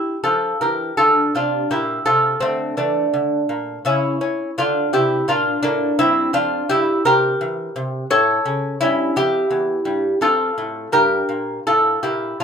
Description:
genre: classical, baroque-style dance for lute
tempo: 84 BPM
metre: 3/4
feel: rubato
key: unclear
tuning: A4 = 439 Hz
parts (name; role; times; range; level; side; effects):
- lute; solo; 0.0-12.4 s; E2 to C#5; -16 LUFS; equal; none
room: wet small room reverb, RT60 0.6 s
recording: band playing live in one room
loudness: -16 LUFS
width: side -7 dB against mid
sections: 0.0-12.4 A section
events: none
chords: 0.2 F5; 2.4 D5; 3.8 N.C.; 4.6 Dm; 6.7 Edim/G; 8.1 A; 8.8 Em6; 10.2 F; 10.9 Edim/G

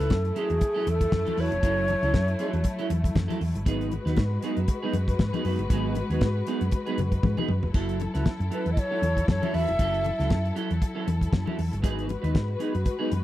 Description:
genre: disco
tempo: 118 BPM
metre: 4/4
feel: swing 56% on 16ths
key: F# dorian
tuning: A4 = 441 Hz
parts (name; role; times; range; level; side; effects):
- bright reedy wooden-headed alto flute; melody; 0.0-2.9, 8.5-10.6 s; G#4 to E5; -28 LUFS; equal; none
- clean electric guitar; accompaniment; 0.0-13.1 s; F#3 to B4; -32 LUFS; right 4 dB; lush chorus
- warm studio string section; sustained chords; 0.0-13.2 s; F#3 to B4; -33 LUFS; left 2 dB; none
- hollow-body short-scale fingered electric bass; bass; 0.0-13.2 s; E#1 to G#2; -27 LUFS; equal; none
- damped 70s drum kit; drums; 0.0-13.2 s; hi-hat, kick drum, snare drum, splash cymbal, toms; -25 LUFS; equal; none
- congas; percussion; 0.1-13.2 s; none; -34 LUFS; left 6 dB; none
room: studio reverb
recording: dry, close 1970s-style studio recording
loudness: -23 LUFS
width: side -14 dB against mid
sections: 0.0-13.2 A section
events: drum fill 7.2-7.7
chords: 0.0 F#m7; 3.7 G#m7; 7.7 F#m7; 11.8 G#m7

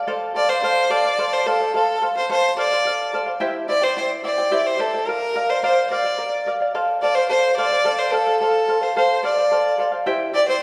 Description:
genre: andean folk, Andean ensemble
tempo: 72 BPM (dotted quarters)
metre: 6/8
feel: straight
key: unclear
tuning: A4 = 441 Hz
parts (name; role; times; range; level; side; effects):
- charango; accompaniment; 0.0-10.6 s; E4 to G5; -24 LUFS; equal; none
- rich fiddle; melody; 0.4-10.6 s; A4 to D5; -23 LUFS; equal; none
- mellow hollow polished pan flute; second line; 5.6-10.6 s; A4 to D5; -26 LUFS; equal; none
room: wet recital hall reverb, RT60 1.7 s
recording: recorded in a church or concert hall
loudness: -20 LUFS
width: mono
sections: 0.1-10.6 A section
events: none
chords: 0.1 F; 3.4 C; 5.1 Bb; 6.7 F; 10.1 C

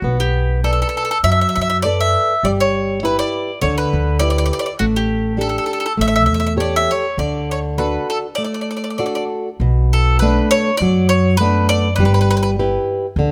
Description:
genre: italian folk, Italian serenade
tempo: 101 BPM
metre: 4/4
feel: swing 54% on 8ths, rubato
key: D major, B minor from 9.6 s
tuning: A4 = 440 Hz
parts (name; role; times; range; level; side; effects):
- bowl-back mandolin; melody; 0.0-12.5 s; F#4 to E5; -21 LUFS; equal; none
- flamenco guitar; accompaniment; 0.0-13.3 s; B2 to D5; -22 LUFS; equal; none
- upright bass; bass; 0.0-13.3 s; G1 to F#2; -21 LUFS; equal; none
room: light reverb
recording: close, detailed microphones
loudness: -17 LUFS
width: mono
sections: 0.0-9.6 A section; 9.6-13.3 B section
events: none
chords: 0.0 Bm7; 2.4 G6; 4.8 A7sus4; 6.0 A7; 7.2 D; 9.6 Bm7; 12.0 G6

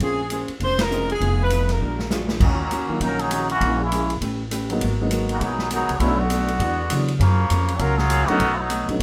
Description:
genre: jazz, big band swing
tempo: 200 BPM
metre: 4/4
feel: swing 61% on 8ths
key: Eb minor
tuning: A4 = 440 Hz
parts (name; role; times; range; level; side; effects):
- clear saxophone section; melody; 0.0-2.1 s; Ab4 to C5; -26 LUFS; equal; none
- vintage hollow-body jazz guitar; accompaniment; 0.0-9.0 s; Gb2 to C5; -32 LUFS; equal; none
- warm baby grand piano; accompaniment; 0.0-9.0 s; Eb3 to F#4; -29 LUFS; equal; none
- upright bass; bass; 0.0-9.0 s; F1 to Db3; -26 LUFS; equal; none
- swinging big-band drum kit; drums; 0.0-9.0 s; crash cymbal, hi-hat, kick drum, ride cymbal, snare drum; -30 LUFS; equal; none
- muted trombone section; second line; 2.4-8.9 s; Db3 to Bb4; -26 LUFS; equal; none
room: moderate club reverb, RT60 0.6 s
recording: none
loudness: -22 LUFS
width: mono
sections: 0.0-2.4 A section; 2.4-9.0 B section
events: band accent 0.8; drum fill 1.8-2.4; trombone section solo 2.4-9.0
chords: 0.0 Bbm9; 1.2 Fm7b5; 1.8 Bb7b13; 2.4 Ebm7; 3.6 Bbm7b5; 4.2 A9; 4.8 Abm9; 6.0 Bm7; 6.6 E9; 7.2 Gbmaj7; 8.4 B7

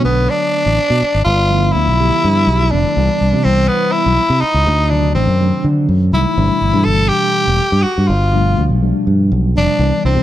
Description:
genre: jazz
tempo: 246 BPM (eighths)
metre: 7/8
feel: straight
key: unclear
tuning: A4 = 440 Hz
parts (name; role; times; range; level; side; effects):
- growling tenor saxophone; melody; 0.0-10.2 s; B3 to A4; -16 LUFS; left 1 dB; slapback echo
- mellow tine electric piano; accompaniment; 0.0-10.2 s; B2 to G4; -20 LUFS; equal; medium stereo tremolo, wide subtle chorus
- fingered electric bass; bass; 0.0-10.2 s; E1 to D3; -14 LUFS; equal; none
room: light reverb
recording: dark, warm production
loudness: -12 LUFS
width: side -13 dB against mid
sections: 0.0-10.2 A section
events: none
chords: 0.0 Bm7; 1.3 G13; 3.0 Cmaj9; 4.7 D7b9; 6.4 G6; 8.1 G9

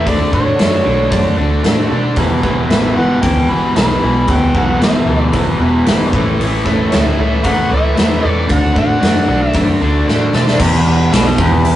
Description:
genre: blues rock power trio and southern rock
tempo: 114 BPM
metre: 4/4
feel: straight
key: unclear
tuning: A4 = 439 Hz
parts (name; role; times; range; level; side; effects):
- overdriven harmonica; melody; 0.0-9.8 s; A4 to B5; -19 LUFS; equal; none
- biting overdriven guitar; riff; 0.0-11.8 s; E2 to D4; -15 LUFS; equal; none
- vintage muted picked electric bass; bass; 0.0-11.8 s; E1 to B2; -18 LUFS; equal; none
- overdriven tonewheel organ; sustained chords; 0.1-11.8 s; D4 to A5; -25 LUFS; right 2 dB; none
- big rock drum kit; drums; 0.1-11.8 s; crash cymbal, hi-hat, kick drum, snare drum; -17 LUFS; equal; none
room: wet studio reverb, RT60 0.5 s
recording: rough rehearsal-room recording, nothing above 10.7 kHz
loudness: -11 LUFS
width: side -13 dB against mid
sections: 0.0-10.6 A section; 10.6-11.8 B section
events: tonewheel organ fill 9.6-10.6; drum fill 10.1-10.6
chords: 0.1 D; 2.2 Em; 6.1 A; 8.5 D; 10.6 Em

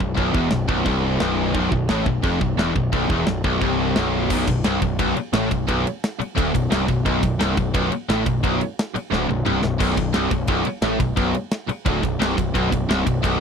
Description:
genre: heavy metal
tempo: 175 BPM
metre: 4/4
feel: straight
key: B phrygian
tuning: A4 = 438 Hz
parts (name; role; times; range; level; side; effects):
- high-gain distorted guitar; riff; 0.0-13.4 s; B1 to A2; -24 LUFS; left 11 dB; distortion
- high-gain distorted guitar; riff; 0.0-13.4 s; B1 to A2; -27 LUFS; equal; distortion
- tight distorted guitar; riff; 0.0-13.4 s; B1 to A2; -25 LUFS; right 13 dB; distortion
- fuzz picked electric bass; bass; 0.0-13.4 s; B0 to A1; -26 LUFS; equal; overdrive
- tight metal drum kit; drums; 0.0-13.3 s; china cymbal, crash cymbal, kick drum, ride cymbal, snare drum, splash cymbal, toms; -25 LUFS; equal; none
room: little or no reverb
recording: dry, close 1970s-style studio recording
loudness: -19 LUFS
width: side -6 dB against mid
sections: 0.0-4.3 A section; 4.3-13.4 B section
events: drum fill 9.1-9.8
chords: 0.0 N.C.; 4.3 Bm

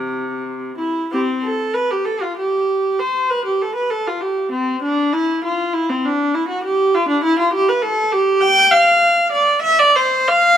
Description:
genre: classical, baroque-style suite movement for unaccompanied viola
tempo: 98 BPM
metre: 3/4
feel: uneven beats, rubato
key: C major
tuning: A4 = 436 Hz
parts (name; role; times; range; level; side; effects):
- rich viola; solo; 0.0-10.6 s; C3 to G5; -15 LUFS; equal; none
room: moderate recital hall reverb, RT60 1.7 s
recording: close, detailed microphones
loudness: -15 LUFS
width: side -10 dB against mid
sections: 0.0-1.1 A section; 1.1-10.6 B section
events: none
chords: none

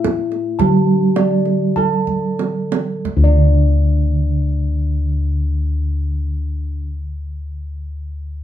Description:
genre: Javanese gamelan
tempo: 44-56 BPM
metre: 4/4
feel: straight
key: unclear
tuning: A4 = 440 Hz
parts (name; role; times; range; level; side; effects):
- gamelan-type bronze metallophone; melody; 0.0-6.9 s; D4 to A4+25c; -24 LUFS; left 6 dB; none
- gamelan-type bronze metallophone; accompaniment; 0.0-6.9 s; D3 to A3+25c; -20 LUFS; right 5 dB; none
- gamelan-type bossed gongs; arpeggios; 0.0-6.9 s; D5 to A5+25c; -24 LUFS; right 4 dB; none
- gamelan-type bossed gongs; bass; 0.0-6.8 s; D2 to A4+25c; -18 LUFS; left 1 dB; none
- kendang; percussion; 0.0-3.7 s; none; -23 LUFS; right 6 dB; none
room: wet studio reverb, RT60 0.6 s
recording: band playing live in one room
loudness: -15 LUFS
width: side -11 dB against mid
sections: 0.0-3.0 A section; 3.0-8.4 B section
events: slowing down 0.0-3.0; drum fill 1.8-3.0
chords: none

